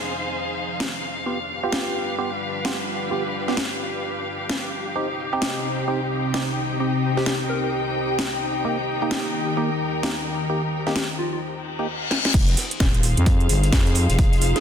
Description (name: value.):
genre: bass house.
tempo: 130 BPM.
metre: 4/4.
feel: swing 61% on 16ths.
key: F minor.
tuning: A4 = 441 Hz.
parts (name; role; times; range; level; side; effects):
dark analog pad; sustained chords; 0.0-14.6 s; C3 to C5; -29 LUFS; left 1 dB; chorus, phaser, sidechain pumping.
muted studio string section; texture; 0.0-14.6 s; D4 to G5; -28 LUFS; left 2 dB; sidechain pumping.
house drum kit; drums; 0.8-14.6 s; crash cymbal, hi-hat, snare drum; -28 LUFS; equal; studio ambience.
percussive organ stab; stabs; 1.3-11.9 s; Bb3 to G4; -28 LUFS; right 2 dB; chorus, phaser, cassette tape, sidechain pumping, ping-pong delay.
soft struck synth lead; melody; 7.2-7.7, 10.9-11.4, 14.6 s; F4 to Bb4; -30 LUFS; left 1 dB; chorus, ping-pong delay.
reverse cymbal; sound effects; 11.7-12.3 s; none; -27 LUFS; left 6 dB; none.
growling FM bass; bass; 12.3-14.5 s; Eb1 to F2; -20 LUFS; equal; tube saturation, sidechain pumping.
crunchy breakbeat drum kit; drums; 12.3-14.5 s; hi-hat, snare drum; -36 LUFS; equal; high-pass filter on hats, studio ambience, high-pass filter on snare, high-pass filter on room.
electronic kick drum; drums; 12.3-14.3 s; none; -19 LUFS; equal; studio ambience.
room: moderate lush hall reverb, RT60 2.0 s, small room ambience.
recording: dense, heavily limited modern master.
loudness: -21 LUFS.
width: side -8 dB against mid.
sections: 0.0-12.3 A section; 12.3-14.6 B section.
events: filter sweep on synth stab 0.0-12.3; reverse cymbal 11.7-12.3; drum fill 12.1; drop 12.3-14.6.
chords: 0.0 Fm7; 1.3 G7; 5.0 Cm; 8.6 Eb; 12.3 Fm7.